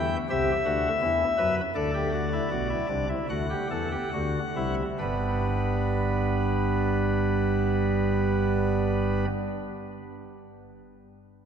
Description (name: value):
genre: classical, baroque-style 3-part fugue for pipe organ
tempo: 68-87 BPM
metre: 4/4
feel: straight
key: G major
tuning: A4 = 440 Hz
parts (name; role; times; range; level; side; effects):
- pipe organ, cornet; solo; 0.0-9.3 s; G1 to G5; -24 LUFS; equal; none
room: wet cathedral reverb, RT60 4.4 s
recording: minimal, uncompressed stereo recording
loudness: -24 LUFS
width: side -7 dB against mid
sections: 0.0-5.0 A section; 5.0-8.5 B section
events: slowing down 0.0-5.0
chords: 0.3 Cmaj9#11; 1.7 G/D; 3.3 D7; 5.0 G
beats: 0.29 1.01 | 1.74 2.50 3.28 4.11 | 4.97 5.85 6.73 7.61